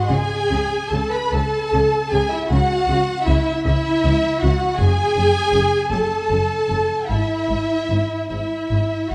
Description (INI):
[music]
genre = classical, slow romantic movement for string orchestra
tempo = 51 BPM (dotted quarters)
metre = 6/8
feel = uneven beats, rubato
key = C# minor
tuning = A4 = 435 Hz
[part]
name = warm symphonic violin section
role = melody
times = 0.0-9.1 s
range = E5 to B5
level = -26 LUFS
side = equal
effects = none
[part]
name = warm symphonic violin section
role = second line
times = 0.0-9.1 s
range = E4 to B4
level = -27 LUFS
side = equal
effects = none
[part]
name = rich symphonic viola section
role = accompaniment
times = 0.0-9.1 s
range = E4 to B4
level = -25 LUFS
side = equal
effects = none
[part]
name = clear symphonic double bass section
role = bass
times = 0.1-9.1 s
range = F#1 to C#2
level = -26 LUFS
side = equal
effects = none
[part]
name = warm symphonic cello section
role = bass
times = 0.1-9.1 s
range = F#2 to C#3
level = -28 LUFS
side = equal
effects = none
[sound]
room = moderate scoring stage reverb, RT60 1.8 s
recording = dark, warm production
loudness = -19 LUFS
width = mono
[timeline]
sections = 0.1-9.1 A section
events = none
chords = 0.1 C#5; 4.8 F#sus2; 7.1 E/G#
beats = | 0.09 1.32 | 2.50 3.65 | 4.79 5.90 | 7.09 8.30